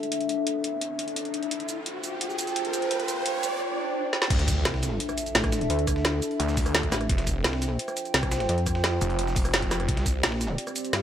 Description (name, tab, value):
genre	dark technical drum and bass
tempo	172 BPM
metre	4/4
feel	straight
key	D minor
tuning	A4 = 440 Hz
part	dark analog pad	sustained chords	0.0-11.0 s	C4 to G5	-30 LUFS	equal	chorus, phaser, sidechain pumping
part	drum and bass drum kit	drums	0.0-11.0 s	crash cymbal, hi-hat, rim click, shaker, snare drum	-28 LUFS	equal	none
part	riser, swell and impact	sound effects	0.0-5.7 s	none	-34 LUFS	equal	none
part	snarling distorted saw bass	bass	4.3-10.2 s	F1 to D2	-28 LUFS	equal	distortion, overdrive
part	breakbeat sampler-style drum kit	drums	4.3-11.0 s	hi-hat, snare drum	-37 LUFS	equal	none
part	electronic kick drum	drums	4.3-10.1 s	none	-28 LUFS	equal	none
part	pulsing pluck wobble bass	bass	4.7-11.0 s	A1 to G2	-27 LUFS	equal	chorus
room	light reverb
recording	high-pass filter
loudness	-24 LUFS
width	side -10 dB against mid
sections	0.0-4.3 A section; 4.3-11.0 B section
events	build-up 0.0-4.3; riser 0.0-3.6; swell 3.6-4.3; drum fill 4.1; drop 4.3-11.0; impact 4.3-5.7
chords	0.0 Dsus2; 1.5 F5; 4.3 Dsus2; 7.1 F5; 9.9 C5